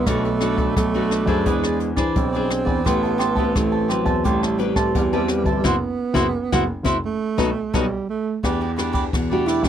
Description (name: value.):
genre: samba and choro.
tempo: 86 BPM.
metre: 4/4.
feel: straight.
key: E minor.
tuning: A4 = 438 Hz.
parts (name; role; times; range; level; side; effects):
breathy tenor saxophone; second line; 0.0-9.7 s; F#3 to F#4; -23 LUFS; right 6 dB; none.
cavaquinho; accompaniment; 0.0-9.7 s; D4 to A5; -26 LUFS; right 4 dB; none.
nylon-string guitar; accompaniment; 0.0-9.7 s; B2 to C5; -25 LUFS; left 9 dB; none.
dark grand piano; bass; 0.0-9.7 s; F#1 to E3; -24 LUFS; equal; none.
jazz brush drum kit; drums; 0.1-9.7 s; hi-hat, kick drum, ride cymbal, rim click, snare drum; -25 LUFS; left 1 dB; none.
room: light reverb.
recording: dry, close 1970s-style studio recording.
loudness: -18 LUFS.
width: side -9 dB against mid.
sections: 0.0-8.4 A section; 8.4-9.7 B section.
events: band accent 5.6-8.4; tenor saxophone solo 8.4-9.7.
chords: 0.1 Bm7; 1.5 E7b13; 2.9 Am9; 5.6 Cmaj7#11/F#; 7.0 B7; 8.4 Em7.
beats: | 0.07 0.77 1.46 2.16 | 2.86 3.55 4.25 4.95 | 5.64 6.34 7.04 7.74 | 8.43 9.13.